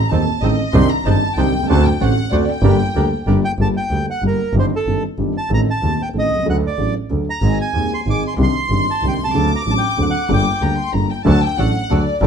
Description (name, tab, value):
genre	tango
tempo	188 BPM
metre	3/4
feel	rubato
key	G harmonic minor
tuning	A4 = 440 Hz
part	warm studio violin section	second line	0.0-3.3, 7.4-12.3 s	D5 to D6	-23 LUFS	left 3 dB	none
part	dark baby grand piano	accompaniment	0.1-12.3 s	Eb1 to A4	-19 LUFS	equal	none
part	bandoneon	stabs	0.1-3.4, 11.3-12.3 s	Bb3 to C5	-26 LUFS	right 5 dB	none
part	clear double bass	bass	0.1-12.3 s	G1 to Eb2	-18 LUFS	right 1 dB	none
part	bandoneon	melody	3.5-10.9 s	A4 to D6	-22 LUFS	right 2 dB	plate reverb
room	light reverb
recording	dark, warm production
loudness	-15 LUFS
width	side -7 dB against mid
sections	0.0-3.6 A section; 3.6-11.3 B section; 11.3-12.3 A section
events	violin section solo 0.0-3.6, 11.3-12.3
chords	0.0 Adim; 0.7 Cmadd9; 1.7 D7; 2.6 Gm; 4.5 Cmadd9/G; 5.5 Adim; 6.5 D; 7.4 Ab; 8.4 Cmadd9; 9.3 D7; 10.3 Gmadd9; 11.3 D